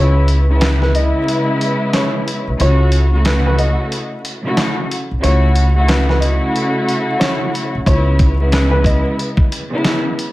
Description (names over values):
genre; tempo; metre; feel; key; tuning
hip hop, boom-bap hip-hop; 91 BPM; 4/4; swing 62% on 16ths; C# minor; A4 = 435 Hz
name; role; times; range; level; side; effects
warm upright piano; melody; 0.0-9.4 s; B4 to D#5; -23 LUFS; equal; high-pass filter, low-pass filter, ping-pong delay
warm studio string section; accompaniment; 0.0-10.2 s; C#3 to F#4; -18 LUFS; equal; cassette tape, high-pass filter, low-pass filter
upright bass; bass; 0.0-9.0 s; B1 to C#2; -14 LUFS; equal; none
dusty soul sampler-style drum kit; drums; 0.3-10.3 s; handclaps, hi-hat, kick drum, snare drum; -18 LUFS; equal; none
room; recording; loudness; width
light reverb; vinyl crackle; -13 LUFS; side -18 dB against mid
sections
0.0-10.3 A section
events
break 0.0-7.9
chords
0.0 C#m7; 2.6 B9sus4 (rootless); 7.9 C#m7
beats
0.61 1.27 1.93 | 2.59 3.25 3.91 4.57 | 5.23 5.89 6.55 7.21 | 7.87 8.53 9.19 9.85